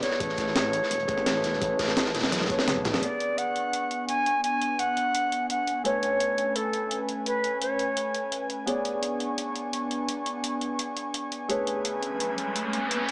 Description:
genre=liquid drum and bass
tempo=170 BPM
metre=4/4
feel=straight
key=B dorian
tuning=A4 = 436 Hz
part: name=concert flute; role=melody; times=0.0-8.5 s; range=A4 to G#5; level=-27 LUFS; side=equal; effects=digital delay
part: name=dark baby grand piano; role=accompaniment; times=0.0-13.1 s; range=A3 to G#5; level=-32 LUFS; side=equal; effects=digital delay
part: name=breakbeat sampler-style drum kit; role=drums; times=0.0-13.1 s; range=hi-hat, snare drum, toms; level=-30 LUFS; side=equal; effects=none
part: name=crunchy breakbeat drum kit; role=drums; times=0.0-3.0 s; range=hi-hat, snare drum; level=-31 LUFS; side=equal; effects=high-pass filter on hats, high-pass filter on snare, high-pass filter on room
part: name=swelling detuned saw bass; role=bass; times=0.2-3.0 s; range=E1 to B1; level=-33 LUFS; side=equal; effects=none
part: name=electronic kick drum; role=drums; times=0.2-2.8 s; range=none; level=-39 LUFS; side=equal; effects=none
part: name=airy breathy pad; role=sustained chords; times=3.0-13.1 s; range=A3 to C#6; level=-32 LUFS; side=equal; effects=chorus
part: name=riser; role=sound effects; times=12.0-13.1 s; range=none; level=-31 LUFS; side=equal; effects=none
room=moderate plate reverb, RT60 1.5 s, small room reverb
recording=small speaker sound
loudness=-25 LUFS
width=side -27 dB against mid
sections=0.0-3.0 A section; 3.0-13.1 B section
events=drum fill 2.3-3.0; band accent 2.9; filter sweep on analog synth pad 3.0-13.1; riser 12.0-13.1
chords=0.2 Amaj9; 3.0 Bm69; 5.8 Amaj9; 8.7 Bm69; 11.5 Amaj9

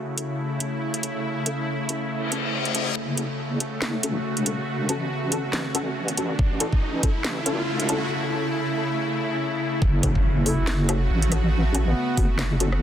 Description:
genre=deep dubstep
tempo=140 BPM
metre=4/4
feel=swing 57% on 16ths, half-time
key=F# minor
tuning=A4 = 440 Hz
part: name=bowed-like drone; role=sustained chords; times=0.0-12.8 s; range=C#3 to F#4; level=-27 LUFS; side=equal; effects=built-in reverb
part: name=filtered dub chord stab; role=stabs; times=0.2-12.7 s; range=C#4 to A4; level=-32 LUFS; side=left 2 dB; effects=ensemble chorus, cassette tape, dub echo
part: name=garage drum kit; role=drums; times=0.2-12.8 s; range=hi-hat, rim click, snare drum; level=-29 LUFS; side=right 1 dB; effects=none
part: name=reverse cymbal, riser and impact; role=sound effects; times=2.2-11.5 s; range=none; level=-32 LUFS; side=left 1 dB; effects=none
part: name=deep soft wobble bass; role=bass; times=3.0-12.8 s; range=E1 to A1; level=-24 LUFS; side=equal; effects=chorus, high-pass filter
part: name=electronic kick drum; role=drums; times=6.4-7.1, 9.8-12.3 s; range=none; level=-22 LUFS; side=equal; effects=none
part: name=mellow duduk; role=melody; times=10.5-12.3 s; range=B3 to E4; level=-31 LUFS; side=equal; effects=dub echo
room=light reverb, digital ambience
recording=dense, heavily limited modern master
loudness=-22 LUFS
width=side -10 dB against mid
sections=0.0-3.0 A section; 3.0-9.8 B section; 9.8-12.8 C section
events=reverse cymbal 2.2-3.0; build-up 3.0-9.8; riser 3.0-8.1; filter sweep on synth stab 3.0-9.8; drop 9.8-12.8; impact 9.8-11.5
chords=0.0 A; 3.0 F#m; 6.4 A; 9.8 F#m

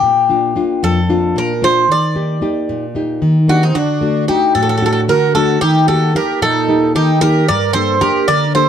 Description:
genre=greek folk, Greek bouzouki band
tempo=225 BPM (eighths)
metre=7/8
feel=straight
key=D phrygian dominant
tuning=A4 = 444 Hz
part: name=Greek bouzouki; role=melody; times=0.0-8.7 s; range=Eb4 to D5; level=-15 LUFS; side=equal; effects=plate reverb
part: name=nylon-string guitar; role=accompaniment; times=0.0-8.7 s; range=F2 to G4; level=-15 LUFS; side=left 1 dB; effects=none
part: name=accordion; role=second line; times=3.5-8.7 s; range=C4 to Bb4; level=-20 LUFS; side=right 6 dB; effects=light tremolo tuning
room=moderate studio reverb, RT60 0.6 s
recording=dark, warm production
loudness=-12 LUFS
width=side -8 dB against mid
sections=0.0-3.8 A section; 3.8-8.7 A section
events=none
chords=0.0 Bb; 1.9 Eb; 3.8 D; 5.6 Eb; 7.5 Gm

